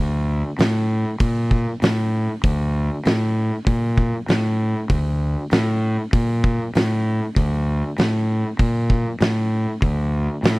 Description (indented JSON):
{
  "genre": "stoner and doom metal",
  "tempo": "98 BPM",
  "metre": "4/4",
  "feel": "straight",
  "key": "unclear",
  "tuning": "A4 = 440 Hz",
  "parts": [
    { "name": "fuzz fingered electric bass", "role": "bass", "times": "0.0-10.6 s", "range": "D2 to Bb2", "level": "-20 LUFS", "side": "equal", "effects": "overdrive" },
    { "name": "oversized low-tuned drum kit", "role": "drums", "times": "0.6-10.6 s", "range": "hi-hat, kick drum, snare drum", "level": "-21 LUFS", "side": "equal", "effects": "none" }
  ],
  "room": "little or no reverb",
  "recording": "dry, close 1970s-style studio recording",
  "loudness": "-18 LUFS",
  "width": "side -23 dB against mid",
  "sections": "0.0-10.6 A section",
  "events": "none",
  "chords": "none"
}